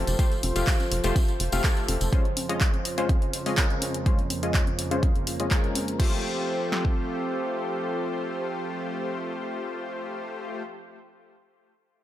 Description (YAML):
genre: progressive house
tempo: 124 BPM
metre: 4/4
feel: straight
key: F major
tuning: A4 = 440 Hz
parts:
  - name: warm analog pad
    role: sustained chords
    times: 0.0-10.6 s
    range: F2 to C5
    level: -32 LUFS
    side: right 2 dB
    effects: chorus, sidechain pumping
  - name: supersaw stab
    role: stabs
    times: 0.0-10.6 s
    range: Ab3 to F5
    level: -30 LUFS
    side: left 3 dB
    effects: sidechain pumping, low-pass filter, tape echo
  - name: tight sequencer bass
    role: bass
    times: 0.0-2.1 s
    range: F1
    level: -27 LUFS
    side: equal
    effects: sidechain pumping
  - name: deep house drum kit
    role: drums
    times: 0.1-6.1 s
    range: crash cymbal, handclaps, hi-hat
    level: -31 LUFS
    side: equal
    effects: none
  - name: tambourine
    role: percussion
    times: 0.1-2.1 s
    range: none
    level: -37 LUFS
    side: left 2 dB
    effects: none
  - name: deep house drum kit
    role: drums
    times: 0.2-7.0 s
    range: kick drum, snare drum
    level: -23 LUFS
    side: equal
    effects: none
  - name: congas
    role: percussion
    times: 0.4-5.9 s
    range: none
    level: -39 LUFS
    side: left 3 dB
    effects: none
room: light reverb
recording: none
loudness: -24 LUFS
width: side -13 dB against mid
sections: 0.0-6.0 A section; 6.0-9.9 B section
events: filter sweep on supersaw synth 0.0-6.0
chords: 0.0 Fadd9; 2.1 Dbmaj7/F; 6.0 Fadd9